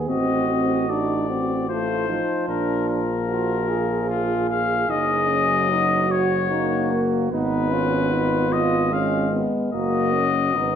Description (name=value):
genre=classical, brass quintet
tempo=75 BPM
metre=3/4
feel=rubato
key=Eb minor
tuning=A4 = 440 Hz
part: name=mellow flugelhorn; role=second line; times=0.0-10.8 s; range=Eb4 to Ab4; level=-28 LUFS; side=right 5 dB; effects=none
part: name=mellow trombone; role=accompaniment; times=0.0-10.8 s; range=Bb3 to Gb4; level=-27 LUFS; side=right 3 dB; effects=none
part: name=warm French horn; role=accompaniment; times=0.0-10.8 s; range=F3 to D4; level=-26 LUFS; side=left 3 dB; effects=none
part: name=warm tuba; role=bass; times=0.0-10.8 s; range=Gb1 to Bb1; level=-27 LUFS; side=right 3 dB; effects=none
part: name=warm trumpet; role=melody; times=0.1-10.8 s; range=F4 to F5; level=-24 LUFS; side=left 6 dB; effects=none
room=wet recital hall reverb, RT60 1.4 s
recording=dark, warm production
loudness=-19 LUFS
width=side -8 dB against mid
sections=0.0-10.8 A section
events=none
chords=0.1 Adim7; 2.5 Bb5; 4.9 Ebm/Gb; 7.3 Fdim/Ab; 9.7 Ebm/Gb